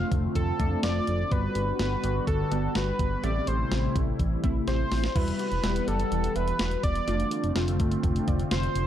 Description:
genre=synth-pop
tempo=125 BPM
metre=4/4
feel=straight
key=E minor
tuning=A4 = 443 Hz
part: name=octave-doubled lead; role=melody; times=0.0-8.9 s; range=A4 to D5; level=-31 LUFS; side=equal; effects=chorus
part: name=funky polysynth comp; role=accompaniment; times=0.0-8.4 s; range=G3 to G4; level=-33 LUFS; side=right 1 dB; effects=chorus
part: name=phased analog pad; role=sustained chords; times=0.0-8.9 s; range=C3 to F#5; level=-33 LUFS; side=left 1 dB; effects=phaser, chorus
part: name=warbly dusty pluck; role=arpeggios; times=0.0-8.9 s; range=D3 to E5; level=-37 LUFS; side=left 2 dB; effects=chorus, analog delay
part: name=smooth synth bass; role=bass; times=0.0-8.9 s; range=E1 to A1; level=-29 LUFS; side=equal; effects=none
part: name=clean 12-bit digital drum machine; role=drums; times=0.1-8.9 s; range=crash cymbal, hi-hat, kick drum, snare drum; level=-30 LUFS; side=equal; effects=none
room=light reverb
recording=dark, warm production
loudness=-24 LUFS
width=side -11 dB against mid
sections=0.0-5.2 A section; 5.2-8.9 B section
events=drum fill 4.7-5.2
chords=0.0 F6; 1.3 Gmaj7; 3.2 Am7; 5.2 Emadd9; 7.1 F6

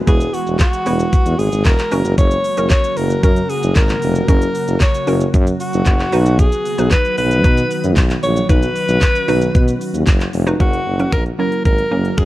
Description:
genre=dance-pop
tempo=114 BPM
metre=4/4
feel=straight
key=F# mixolydian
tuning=A4 = 440 Hz
part: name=glassy FM pad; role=sustained chords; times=0.0-12.2 s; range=C#3 to F#4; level=-25 LUFS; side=left 1 dB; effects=ensemble chorus, built-in reverb, sidechain pumping
part: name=clear alto saxophone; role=melody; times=0.1-12.2 s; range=F#4 to C#5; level=-20 LUFS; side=equal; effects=none
part: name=hollow square pluck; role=accompaniment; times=0.1-12.2 s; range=F#3 to B4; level=-23 LUFS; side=right 2 dB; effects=chorus, sidechain pumping
part: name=warm tuba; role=bass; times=0.1-12.2 s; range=E1 to B2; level=-18 LUFS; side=equal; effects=sidechain pumping
part: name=pop drum kit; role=drums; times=0.1-12.2 s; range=finger snaps, handclaps, hi-hat, kick drum, shaker, snare drum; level=-15 LUFS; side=equal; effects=none
room=digital ambience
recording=worn, warbling old tape, cassette tape, warbly pitch drift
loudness=-13 LUFS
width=side -16 dB against mid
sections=0.0-10.6 A section; 10.6-12.2 B section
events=none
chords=0.0 Eadd9; 1.9 F#; 6.1 B; 10.6 F#

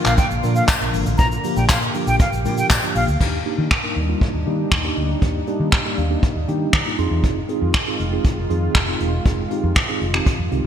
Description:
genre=dance-pop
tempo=119 BPM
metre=4/4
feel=straight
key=Eb major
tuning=A4 = 440 Hz
part: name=mellow tine electric piano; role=accompaniment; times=0.0-10.7 s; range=F3 to C6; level=-25 LUFS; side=right 1 dB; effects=medium stereo tremolo, sidechain pumping
part: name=lush unison pad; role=sustained chords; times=0.0-10.7 s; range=D3 to G4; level=-28 LUFS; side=left 1 dB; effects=chorus, sidechain pumping
part: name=silver concert flute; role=melody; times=0.1-3.0 s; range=F5 to Bb5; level=-24 LUFS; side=right 1 dB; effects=sidechain pumping, ping-pong delay
part: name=vintage muted fingered electric bass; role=bass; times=0.1-10.7 s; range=Fb1 to Eb3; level=-22 LUFS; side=equal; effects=sidechain pumping
part: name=vintage brush drum kit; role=drums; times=0.1-10.6 s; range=crash cymbal, finger snaps, handclaps, hi-hat, kick drum, shaker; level=-20 LUFS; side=equal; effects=gated reverb
part: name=tambourine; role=percussion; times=0.7-2.8 s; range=none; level=-32 LUFS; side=left 13 dB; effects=none
room=light reverb, small room ambience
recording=bright 1980s-style digital production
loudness=-17 LUFS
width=side -9 dB against mid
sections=0.0-3.2 A section; 3.2-10.7 B section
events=drop 0.0-3.2; tine electric piano fill 5.7-7.2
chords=0.0 Bb; 3.2 Ebmaj7; 7.0 Fm7

